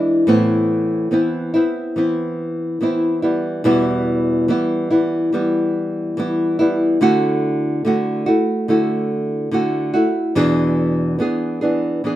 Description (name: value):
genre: pop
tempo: 71 BPM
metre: 4/4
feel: straight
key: E minor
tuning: A4 = 440 Hz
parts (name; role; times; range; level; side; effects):
- nylon-string guitar; solo; 0.0-12.2 s; E2 to G#4; -16 LUFS; equal; none
room: moderate studio ambience, RT60 0.5 s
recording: rough home demo mix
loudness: -16 LUFS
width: side -13 dB against mid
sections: 0.3-12.2 A section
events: none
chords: 0.3 Amadd9; 3.2 Em; 7.0 Dadd9; 10.4 E7